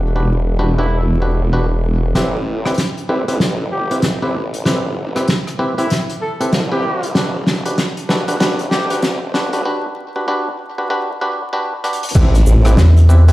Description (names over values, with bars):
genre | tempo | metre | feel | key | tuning
glitch hop | 96 BPM | 4/4 | swing 61% on 16ths | A dorian | A4 = 439 Hz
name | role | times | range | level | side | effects
formant-sweep wobble bass | bass | 0.0-12.8 s | E1 to D2 | -17 LUFS | equal | chorus, high-pass filter
clav | stabs | 0.2-13.3 s | C4 to B4 | -20 LUFS | equal | vintage 12-bit sampler grit, sidechain pumping, low-pass filter, digital delay
dark trumpet | melody | 0.8-9.0 s | E4 to A4 | -23 LUFS | equal | low-pass filter, digital delay
unplugged drum kit | drums | 2.1-13.3 s | crash cymbal, hi-hat, rim click, shaker, snare drum | -19 LUFS | equal | none
electronic kick drum | drums | 12.2-12.3 s | none | -12 LUFS | equal | none
rubbery square bass | bass | 12.8-13.3 s | E2 | -6 LUFS | equal | tube saturation
room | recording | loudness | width
moderate small room reverb, RT60 0.5 s | played on a big sound system in a bare room, large studio reverb, vinyl crackle, high-pass filter | -14 LUFS | side -17 dB against mid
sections
0.0-2.2 A section; 2.2-12.2 B section; 12.2-13.3 C section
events
build-up 2.2-12.2; drum fill 2.2-9.7, 11.8-12.2; filter sweep on clav 2.2-12.2; break 9.7-12.2; drop 12.2-13.3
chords
0.0 Em7; 2.2 Am7; 7.2 Em7; 12.2 Am7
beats
0.28 0.90 1.53 | 2.15 2.78 3.40 4.03 | 4.65 5.28 5.90 6.53 | 7.15 7.78 8.40 9.03 | 9.65 10.28 10.90 11.53 | 12.15 12.78